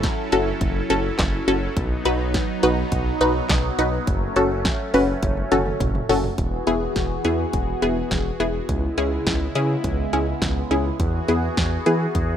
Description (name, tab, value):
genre	synth-pop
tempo	104 BPM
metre	4/4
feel	straight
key	F# dorian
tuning	A4 = 441 Hz
part	phased analog pad	sustained chords	0.0-12.4 s	C#3 to A4	-27 LUFS	equal	phaser, chorus
part	smooth synth bass	bass	0.0-12.4 s	E1 to E3	-25 LUFS	equal	none
part	house drum kit	drums	0.0-12.3 s	handclaps, hi-hat, kick drum, snare drum, toms	-24 LUFS	equal	none
part	wide unison pluck	accompaniment	0.3-12.0 s	B3 to B4	-22 LUFS	left 1 dB	none
room	light reverb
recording	rough home demo mix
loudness	-19 LUFS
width	side -9 dB against mid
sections	0.0-6.4 A section; 6.4-12.4 B section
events	drum fill 5.2-6.4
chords	0.0 F#m7; 1.8 B; 4.1 F#m; 6.4 Eadd9; 8.7 C#m7; 11.0 Eadd9